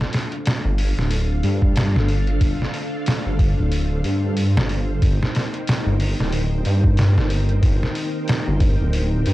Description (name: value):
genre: trip hop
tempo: 92 BPM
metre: 4/4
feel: swing 58% on 16ths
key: unclear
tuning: A4 = 440 Hz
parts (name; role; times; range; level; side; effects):
- string machine, cellos; sustained chords; 0.0-9.3 s; D4 to G5; -27 LUFS; left 1 dB; ensemble chorus
- trip hop sampler-style drum kit; drums; 0.0-9.3 s; hi-hat, kick drum, snare drum; -21 LUFS; equal; none
- dark detuned saw bass; bass; 0.7-9.3 s; D1 to G2; -19 LUFS; equal; none
room: little or no reverb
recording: dry, gritty hardware recording, cassette tape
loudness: -18 LUFS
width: side -17 dB against mid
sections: 0.0-9.3 A section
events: none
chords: 0.0 Dm7; 5.0 Cm7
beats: 0.46 1.11 1.76 | 2.41 3.06 3.72 4.37 | 5.02 5.67 6.33 6.98 | 7.63 8.28 8.94